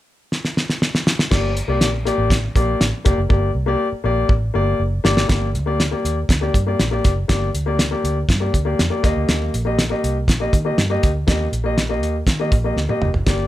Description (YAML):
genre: uptempo 1960s-style soul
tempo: 120 BPM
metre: 4/4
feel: straight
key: G minor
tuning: A4 = 435 Hz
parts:
  - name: cloth-damped thuddy drum kit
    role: drums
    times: 0.3-13.4 s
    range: crash cymbal, hi-hat, kick drum, snare drum, toms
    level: -18 LUFS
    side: equal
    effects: none
  - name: warm concert grand piano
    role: accompaniment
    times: 1.3-13.5 s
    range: Bb3 to Eb5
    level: -22 LUFS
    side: left 2 dB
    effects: none
  - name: vintage muted fingered electric bass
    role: bass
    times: 1.3-13.5 s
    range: F1 to Eb3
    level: -22 LUFS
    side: right 1 dB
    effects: none
room: moderate club reverb, RT60 0.7 s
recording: none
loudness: -16 LUFS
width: side -14 dB against mid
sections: 0.0-1.3 A section; 1.3-5.3 B section; 5.3-13.5 C section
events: drum fill 0.3-1.3, 3.3-5.3, 12.8-13.3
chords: 0.0 N.C.; 1.3 Gm; 9.0 Eb